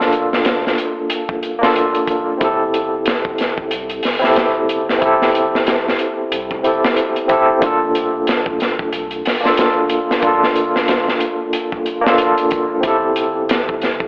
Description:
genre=trip hop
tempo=92 BPM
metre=4/4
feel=swing 58% on 16ths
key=G dorian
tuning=A4 = 440 Hz
part: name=overdriven tine electric piano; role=accompaniment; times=0.0-14.1 s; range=Bb3 to A4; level=-18 LUFS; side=equal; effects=fast tremolo, harmonic tremolo, tape echo
part: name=soft dub sub bass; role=bass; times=0.0-14.1 s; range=F1 to C2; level=-43 LUFS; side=equal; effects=none
part: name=crunchy breakbeat drum kit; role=drums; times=0.0-14.1 s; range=hi-hat, kick drum, snare drum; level=-22 LUFS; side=equal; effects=none
room=light reverb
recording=dry, gritty hardware recording, vinyl crackle, telephone sound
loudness=-17 LUFS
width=mono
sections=0.0-14.1 A section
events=none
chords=0.0 Gm7; 2.4 Am7/G; 7.6 Gm7; 12.8 Am7/G

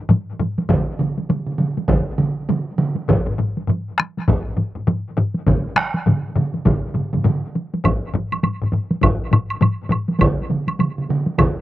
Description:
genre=japanese traditional, taiko drum ensemble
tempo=101 BPM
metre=4/4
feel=swing 60% on 16ths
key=none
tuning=none
part: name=taiko ensemble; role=percussion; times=0.1-11.6 s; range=none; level=-22 LUFS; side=right 1 dB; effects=none
part: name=taiko ensemble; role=percussion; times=0.1-10.1 s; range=none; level=-20 LUFS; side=left 2 dB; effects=none
part: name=solo taiko drums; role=percussion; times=0.7-11.6 s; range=none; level=-22 LUFS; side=right 3 dB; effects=none
part: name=taiko ensemble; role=percussion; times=0.7-11.6 s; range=none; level=-19 LUFS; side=equal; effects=none
part: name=woodblock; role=percussion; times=7.8-11.6 s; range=none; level=-24 LUFS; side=right 3 dB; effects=slapback echo
room=light reverb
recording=recorded outdoors, with no room sound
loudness=-18 LUFS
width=side -15 dB against mid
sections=0.0-11.6 A section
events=none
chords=none

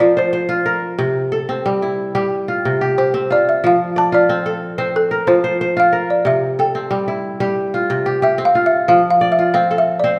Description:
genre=west african traditional, West African string and xylophone music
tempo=91 BPM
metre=4/4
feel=straight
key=F major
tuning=A4 = 441 Hz
part: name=balafon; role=melody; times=0.0-10.2 s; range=A4 to A5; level=-18 LUFS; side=equal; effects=none
part: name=kora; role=arpeggios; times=0.0-10.2 s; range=C3 to D5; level=-20 LUFS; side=equal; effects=none
room=wet recital hall reverb, RT60 1.7 s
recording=none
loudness=-17 LUFS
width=mono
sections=0.0-10.2 A section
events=balafon solo 0.0-10.2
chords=0.0 F5; 1.0 C; 3.6 F; 6.3 C; 8.9 F

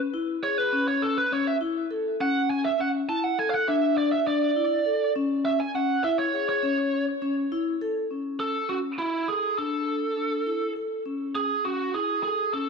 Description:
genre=progressive instrumental, progressive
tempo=203 BPM (eighths)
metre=5/8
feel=straight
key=A major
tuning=A4 = 440 Hz
part: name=vibraphone with medium mallets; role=arpeggios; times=0.0-12.7 s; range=C#4 to A4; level=-27 LUFS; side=left 4 dB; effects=plate reverb, ping-pong delay
part: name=biting lead guitar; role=melody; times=0.4-12.7 s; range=E4 to A5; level=-26 LUFS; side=right 4 dB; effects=overdrive, plate reverb, ping-pong delay
room=moderate studio reverb, RT60 0.6 s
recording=dark, warm production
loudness=-24 LUFS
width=side -5 dB against mid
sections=0.0-8.1 A section; 8.1-12.7 B section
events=lead electric guitar solo 0.0-8.1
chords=0.0 C#m (rootless); 0.7 A; 3.7 Dsus2; 5.2 A (rootless); 9.6 Dsus2; 11.1 A/C#

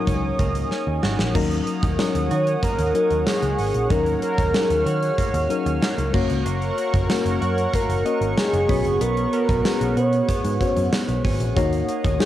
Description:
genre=1980s-style pop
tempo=94 BPM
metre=4/4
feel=straight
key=unclear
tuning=A4 = 435 Hz
part: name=mellow FM electric piano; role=accompaniment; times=0.0-12.3 s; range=F#3 to D#5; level=-26 LUFS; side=left 7 dB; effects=chorus
part: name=chorused pulse-width pad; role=sustained chords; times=0.0-12.3 s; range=B3 to E#6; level=-28 LUFS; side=right 2 dB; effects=none
part: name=direct-recorded clean electric guitar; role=riff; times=0.0-12.3 s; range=A#3 to F#4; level=-32 LUFS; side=right 8 dB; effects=lush chorus
part: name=vintage muted picked electric bass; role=bass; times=0.1-12.2 s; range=F#1 to D#3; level=-24 LUFS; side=right 1 dB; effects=none
part: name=gated 80s drum kit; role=drums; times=0.1-12.3 s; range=crash cymbal, hi-hat, kick drum, snare drum, tambourine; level=-24 LUFS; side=right 1 dB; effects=cassette tape
part: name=mellow horn-like synth lead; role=melody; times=2.3-11.2 s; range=G#4 to C#5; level=-24 LUFS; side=right 1 dB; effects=chorus, cassette tape
room=light reverb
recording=home recording on cassette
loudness=-19 LUFS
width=side -12 dB against mid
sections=0.0-1.4 A section; 1.4-12.3 B section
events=drum fill 0.7-1.4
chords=0.0 D#m7; 6.1 F#; 8.7 Bsus2; 11.6 D#m7

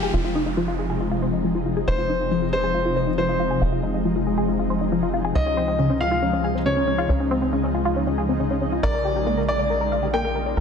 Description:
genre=uplifting trance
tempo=138 BPM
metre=4/4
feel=straight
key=F minor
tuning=A4 = 439 Hz
part: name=warm grand piano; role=second line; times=0.0-10.6 s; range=G4 to G5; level=-25 LUFS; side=left 2 dB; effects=digital delay
part: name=tight sequenced synth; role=arpeggios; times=0.0-10.6 s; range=Db3 to F5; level=-25 LUFS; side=left 2 dB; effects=chorus, phaser, dub echo
part: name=tight sequencer bass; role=bass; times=0.0-10.6 s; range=F1 to Db2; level=-28 LUFS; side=equal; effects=none
part: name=electronic hi-hat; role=drums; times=0.0-10.6 s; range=none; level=barely audible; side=none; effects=none
part: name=downlifter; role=sound effects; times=0.0-1.9 s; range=none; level=-36 LUFS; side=right 1 dB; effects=none
room=moderate digital room reverb, RT60 1.1 s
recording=dense, heavily limited modern master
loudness=-20 LUFS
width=side -6 dB against mid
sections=0.0-10.6 A section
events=filter sweep on synth arpeggio sound 0.0-10.6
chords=0.0 Fm7; 5.4 Dbadd9; 8.8 Bb6

